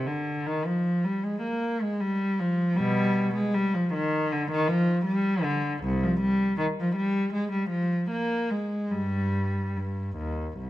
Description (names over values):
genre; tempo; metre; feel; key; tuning
classical, baroque-style suite movement for unaccompanied cello; 78 BPM; 4/4; rubato; unclear; A4 = 440 Hz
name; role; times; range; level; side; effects
rich cello; solo; 0.0-10.7 s; C2 to Bb3; -24 LUFS; equal; none
room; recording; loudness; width
moderate recital hall reverb, RT60 1.5 s; close, detailed microphones; -24 LUFS; side -15 dB against mid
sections
0.0-10.7 A section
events
none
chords
none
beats
0.46 1.24 2.01 | 2.77 3.54 4.30 5.06 | 5.82 6.57 7.32 8.10 | 8.91 9.75 10.58